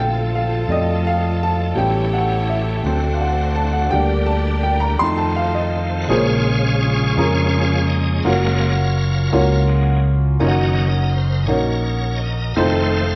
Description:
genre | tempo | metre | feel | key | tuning
gospel | 56 BPM (dotted quarters) | 6/8 | straight | Bb minor from 6.1 s | A4 = 440 Hz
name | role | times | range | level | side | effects
warm upright piano | accompaniment | 0.0-13.2 s | Bb2 to C6 | -23 LUFS | equal | none
bright tonewheel organ | sustained chords | 0.0-13.2 s | Db3 to F#5 | -26 LUFS | equal | slow rotary speaker, chorus vibrato
warm studio string section | sustained chords | 0.0-6.1 s | D4 to D5 | -31 LUFS | equal | none
fingered electric bass | bass | 0.0-13.2 s | F1 to F2 | -21 LUFS | equal | none
room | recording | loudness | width
wet large studio reverb, RT60 1.3 s | band playing live in one room | -18 LUFS | mono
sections
0.0-6.1 A section; 6.1-13.2 B section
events
upright piano solo 0.0-6.1; tonewheel organ solo 6.1-13.2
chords
0.0 Bbmaj7; 1.8 A7; 2.8 D7; 3.9 Gm/D; 5.0 F7; 6.1 Bbm7; 8.2 Gbmaj7; 10.4 Ebm7/Gb; 12.6 F7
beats
0.68 | 1.76 2.84 | 3.92 5.00 | 6.08 7.16 | 8.24 9.32 | 10.40 11.48 | 12.56

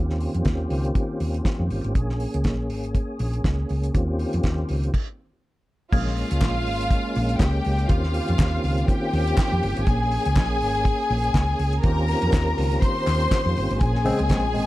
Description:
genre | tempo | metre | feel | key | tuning
disco | 122 BPM | 4/4 | swing 56% on 16ths | Bb dorian | A4 = 440 Hz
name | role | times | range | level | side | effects
percussive tonewheel organ | sustained chords | 0.0-14.7 s | Eb3 to Ab4 | -28 LUFS | equal | chorus vibrato, slow rotary speaker
hollow-body short-scale fingered electric bass | bass | 0.0-14.7 s | G1 to F2 | -24 LUFS | equal | none
damped 70s drum kit | drums | 0.1-14.7 s | crash cymbal, hi-hat, kick drum, snare drum | -24 LUFS | equal | none
clear symphonic string section | second line | 5.9-14.7 s | F4 to C6 | -26 LUFS | left 1 dB | analog delay
group handclap | percussion | 6.4-14.4 s | none | -38 LUFS | left 5 dB | none
barky tine electric piano | accompaniment | 13.8-14.7 s | Bb2 to C4 | -24 LUFS | left 2 dB | overdrive
room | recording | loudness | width
light reverb, studio ambience | dark, warm production | -20 LUFS | side -16 dB against mid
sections
0.0-5.9 A section; 5.9-14.7 B section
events
stop 4.9-5.9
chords
0.0 Eb13; 2.0 Bbm7; 3.9 Eb13; 5.9 Bbm7; 7.9 Eb13; 9.9 Bbm7; 11.8 Eb13; 13.8 Bbm9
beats
0.47 0.96 1.46 | 1.96 2.46 2.95 3.45 | 3.95 4.44 4.94 5.43 | 5.93 6.42 6.92 7.41 | 7.90 8.39 8.89 9.38 | 9.87 10.36 10.86 11.35 | 11.84 12.33 12.83 13.32 | 13.81 14.30

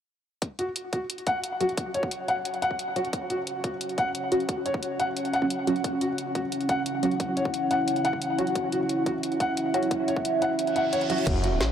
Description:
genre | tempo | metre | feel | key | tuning
dark technical drum and bass | 177 BPM | 4/4 | straight | unclear | A4 = 440 Hz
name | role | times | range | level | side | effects
dark analog pad | sustained chords | 2.0-11.7 s | C#4 to C#6 | -29 LUFS | right 1 dB | chorus, phaser, sidechain pumping
drum and bass drum kit | drums | 0.4-11.7 s | crash cymbal, hi-hat, snare drum | -33 LUFS | left 1 dB | none
electronic kick drum | drums | 0.4-11.3 s | none | -32 LUFS | equal | high-pass filter on kick, high-pass filter on room
felt-muted upright piano | arpeggios | 0.6-11.5 s | F#4 to F#5 | -28 LUFS | left 1 dB | sidechain pumping, low-pass filter, tape echo
filtered dub chord stab | stabs | 1.6-11.4 s | F#3 to F#4 | -32 LUFS | equal | phaser, lush chorus, tape echo
reverse cymbal | sound effects | 10.7-11.3 s | none | -36 LUFS | right 4 dB | none
snarling distorted saw bass | bass | 11.3-11.7 s | F#1 to A1 | -26 LUFS | equal | distortion, tube saturation
room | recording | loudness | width
wet huge ambient reverb, RT60 8.4 s | dreamy mix soaked in reverb | -24 LUFS | side -9 dB against mid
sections
0.4-11.3 A section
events
filter sweep on analog synth pad 0.4-11.3; filter sweep on synth stab 0.4-11.3; kick drops out 10.6-11.3; reverse cymbal 10.7-11.3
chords
0.4 F#5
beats
| 0.42 0.76 1.10 1.44 | 1.77 2.11 2.45 2.79 | 3.13 3.47 3.81 4.15 | 4.49 4.83 5.17 5.50 | 5.84 6.18 6.52 6.86 | 7.20 7.54 7.88 8.22 | 8.55 8.89 9.23 9.57 | 9.91 10.25 10.59 10.93 | 11.27 11.61

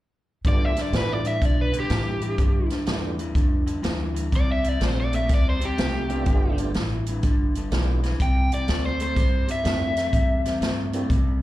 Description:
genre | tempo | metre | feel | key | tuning
electric blues shuffle | 124 BPM | 4/4 | swing 66% on 8ths | G mixolydian | A4 = 440 Hz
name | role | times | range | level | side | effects
tonewheel organ | accompaniment | 0.4-3.2, 6.1-11.1 s | A3 to G4 | -33 LUFS | right 5 dB | slow rotary speaker, overdrive, chorus vibrato, plate reverb, slapback echo
electric guitar through a small old amp | riff | 0.4-11.4 s | G2 to A3 | -29 LUFS | left 2 dB | slapback echo
upright bass | bass | 0.4-11.4 s | G1 to C3 | -26 LUFS | equal | none
swinging big-band drum kit | drums | 0.4-11.2 s | hi-hat, kick drum, snare drum | -24 LUFS | equal | none
overdriven semi-hollow guitar | melody | 0.5-10.9 s | G4 to G5 | -27 LUFS | equal | plate reverb, slapback echo
room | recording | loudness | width
little or no reverb | live gig heard through the venue's PA, club reverb | -21 LUFS | side -15 dB against mid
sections
0.5-11.4 A section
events
none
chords
0.5 G9; 4.3 Csus2; 6.3 G9; 8.2 C9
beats
| 0.45 0.94 1.42 1.91 | 2.39 2.87 3.36 3.84 | 4.33 4.81 5.30 5.78 | 6.27 6.75 7.24 7.72 | 8.20 8.69 9.17 9.66 | 10.14 10.62 11.11

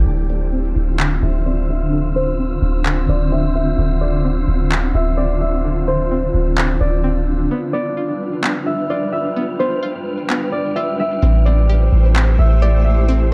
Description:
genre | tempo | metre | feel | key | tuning
hip hop, atmospheric cloud-rap | 129 BPM | 4/4 | half-time | D dorian | A4 = 440 Hz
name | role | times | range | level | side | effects
concert harp | melody | 0.0-13.3 s | C5 to E5 | -26 LUFS | equal | low-pass filter, tape echo
granular cloud pad | sustained chords | 0.0-13.3 s | D3 to C5 | -25 LUFS | equal | built-in reverb, low-pass filter
string-like resonator pluck | arpeggios | 0.0-13.3 s | D3 to G4 | -30 LUFS | equal | chorus, low-pass filter, tape echo
warm 808-style bass | bass | 0.0-7.5, 11.2-13.3 s | D1 to A1 | -18 LUFS | equal | none
wind-like tuned noise texture | texture | 0.0-13.3 s | A4 to F6 | -36 LUFS | equal | built-in reverb
electronic handclaps | drums | 1.0-12.3 s | none | -24 LUFS | equal | none
room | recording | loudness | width
digital ambience | dark, warm production | -18 LUFS | mono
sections
0.1-13.3 A section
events
filter sweep 0.1-13.3; break 7.5-8.4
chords
0.1 Dm9; 7.5 G7; 11.2 Am7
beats
| 0.06 0.53 0.99 1.46 | 1.92 2.39 2.85 3.32 | 3.79 4.25 4.71 5.18 | 5.64 6.11 6.58 7.04 | 7.50 7.97 8.44 8.90 | 9.37 9.83 10.30 10.76 | 11.23 11.69 12.16 12.62 | 13.09

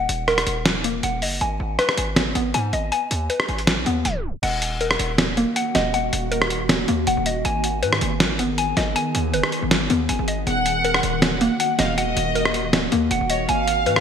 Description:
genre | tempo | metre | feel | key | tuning
hip hop, trap | 159 BPM | 4/4 | half-time | Eb minor | A4 = 442 Hz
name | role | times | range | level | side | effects
hollow square pluck | arpeggios | 0.0-14.0 s | Bb3 to Ab5 | -24 LUFS | left 2 dB | chorus, low-pass filter, digital delay
distorted 808-style bass | bass | 0.0-14.0 s | Eb1 to Ab2 | -27 LUFS | equal | distortion
dusty soul sampler-style drum kit | drums | 0.1-14.0 s | crash cymbal, hi-hat, rim click, snare drum | -22 LUFS | equal | gated reverb
ethereal airy pad | sustained chords | 5.5-14.0 s | Eb3 to Ab4 | -27 LUFS | equal | ensemble chorus, built-in reverb
warm studio violin section | second line | 10.5-14.0 s | Db5 to Gb5 | -24 LUFS | right 2 dB | digital delay
room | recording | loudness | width
moderate lush hall reverb, RT60 2.1 s | bright 1980s-style digital production, tape stop | -19 LUFS | side -7 dB against mid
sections
0.0-4.4 A section; 4.4-14.0 B section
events
tape stop 4.1-4.4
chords
0.0 Ebm; 1.4 Abm; 4.4 Ebm; 7.4 Abm; 10.5 Ebm; 13.5 Abm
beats
0.28 0.66 1.03 | 1.41 1.79 2.17 2.54 | 2.92 3.30 3.67 4.05 | 4.43 4.81 5.18 5.56 | 5.94 6.32 6.69 7.07 | 7.45 7.83 8.20 8.58 | 8.96 9.34 9.71 10.09 | 10.47 10.85 11.22 11.60 | 11.98 12.35 12.73 13.11 | 13.49 13.86

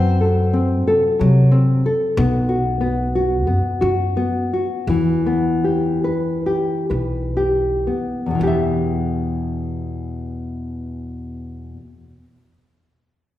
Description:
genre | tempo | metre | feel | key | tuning
fado-style ballad | 58-94 BPM | 4/4 | rubato | E minor | A4 = 441 Hz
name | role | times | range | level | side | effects
picked twelve-string acoustic guitar | melody | 0.0-0.8 s | C5 | -34 LUFS | equal | none
nylon-string guitar | accompaniment | 0.0-11.9 s | E2 to E5 | -19 LUFS | left 1 dB | none
upright bass | bass | 0.0-11.9 s | B1 to C3 | -20 LUFS | equal | none
room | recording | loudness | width
wet recital hall reverb, RT60 1.6 s | recorded in a church or concert hall | -17 LUFS | side -13 dB against mid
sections
0.0-8.4 A section; 8.4-12.4 B section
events
slowing down 2.2-8.4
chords
0.0 F#dim; 2.2 B5; 4.9 Em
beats
0.22 0.87 1.52 | 2.16 2.81 3.46 4.15 | 4.87 5.63 6.46 7.38 | 8.39 9.41 10.40 11.41

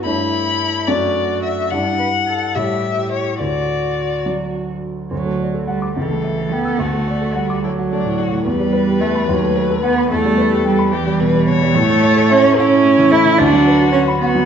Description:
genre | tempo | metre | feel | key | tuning
quick classical-period movement for piano trio | 72 BPM (dotted quarters) | 6/8 | straight | D major | A4 = 438 Hz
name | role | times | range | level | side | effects
rich cello | second line | 0.0-14.5 s | E3 to B4 | -17 LUFS | right 4 dB | none
warm baby grand piano | accompaniment | 0.0-14.5 s | C#2 to E6 | -19 LUFS | equal | none
rich violin | melody | 0.1-14.5 s | D4 to B5 | -21 LUFS | left 8 dB | none
room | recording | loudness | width
wet recital hall reverb, RT60 1.6 s | nothing above 7.7 kHz | -14 LUFS | side -8 dB against mid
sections
0.0-5.1 A section; 5.1-14.5 B section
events
none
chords
0.1 A7/G; 0.9 D/F#; 1.7 Em7/G; 2.6 A7; 3.4 D; 6.0 A7/C#; 6.8 D; 8.5 Em; 9.3 B7/D#; 10.1 Em; 11.8 A; 13.4 Bm/D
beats
| 0.06 0.88 | 1.72 2.56 | 3.41 4.26 | 5.12 5.96 | 6.80 7.63 | 8.46 9.29 | 10.11 10.93 | 11.76 12.58 | 13.40 14.21

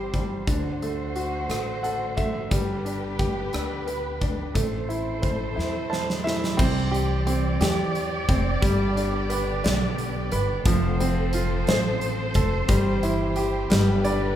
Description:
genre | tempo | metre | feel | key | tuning
six-eight pop ballad | 59 BPM (dotted quarters) | 6/8 | straight | C major | A4 = 439 Hz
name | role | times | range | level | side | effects
clear grand piano | accompaniment | 0.0-14.4 s | C3 to A5 | -27 LUFS | equal | none
warm studio string section | sustained chords | 0.0-14.4 s | D3 to D5 | -30 LUFS | equal | none
upright bass | bass | 0.0-14.3 s | F1 to E2 | -28 LUFS | equal | none
huge arena drum kit | drums | 0.1-14.2 s | crash cymbal, hi-hat, kick drum, rim click, snare drum | -27 LUFS | equal | none
room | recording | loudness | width
moderate large studio reverb, RT60 1.3 s | band playing live in one room | -22 LUFS | side -11 dB against mid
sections
0.0-6.6 A section; 6.6-14.4 B section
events
grand piano fill 1.5-2.5, 5.6-6.6, 13.7-14.4; drum fill 5.6-6.6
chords
0.5 D7; 2.5 G; 4.6 Am; 6.6 Cadd9; 8.6 G; 10.7 F; 12.7 C/G; 13.7 G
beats
| 0.47 1.49 | 2.51 3.53 | 4.55 5.57 | 6.59 7.61 | 8.62 9.64 | 10.66 11.67 | 12.69 13.71

